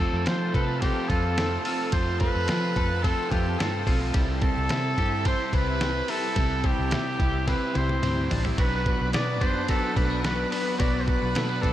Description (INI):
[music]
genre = jangly indie pop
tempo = 108 BPM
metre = 4/4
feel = straight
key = unclear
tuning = A4 = 440 Hz
[part]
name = warm trumpet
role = melody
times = 0.0-11.7 s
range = G4 to D5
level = -29 LUFS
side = equal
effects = none
[part]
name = raw garage guitar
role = accompaniment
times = 0.0-11.7 s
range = F2 to E4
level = -33 LUFS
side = right 4 dB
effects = overdrive
[part]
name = string machine, full ensemble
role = sustained chords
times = 0.0-11.7 s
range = C4 to D6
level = -37 LUFS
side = equal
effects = ensemble chorus
[part]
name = twelve-string electric guitar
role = arpeggios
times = 0.0-11.7 s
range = F3 to A4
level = -33 LUFS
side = left 4 dB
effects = wide subtle chorus
[part]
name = vintage muted fingered electric bass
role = bass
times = 0.0-11.7 s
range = A1 to F3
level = -29 LUFS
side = equal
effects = none
[part]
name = lo-fi sampler-style drum kit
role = drums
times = 0.3-11.7 s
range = hi-hat, kick drum, ride cymbal, snare drum, toms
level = -28 LUFS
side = equal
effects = overdrive
[part]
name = combo organ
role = accompaniment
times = 8.6-11.7 s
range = B3 to D5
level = -34 LUFS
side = right 3 dB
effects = none
[sound]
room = moderate huge ambient reverb, RT60 4.5 s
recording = dreamy mix soaked in reverb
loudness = -23 LUFS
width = side -12 dB against mid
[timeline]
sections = 0.0-11.7 A section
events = drum fill 7.5-8.6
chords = 0.0 F; 4.1 C; 8.6 Bm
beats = 0.26 0.82 1.37 | 1.93 2.48 3.04 3.59 | 4.15 4.70 5.25 5.81 | 6.36 6.92 7.47 8.03 | 8.58 9.14 9.69 10.25 | 10.80 11.36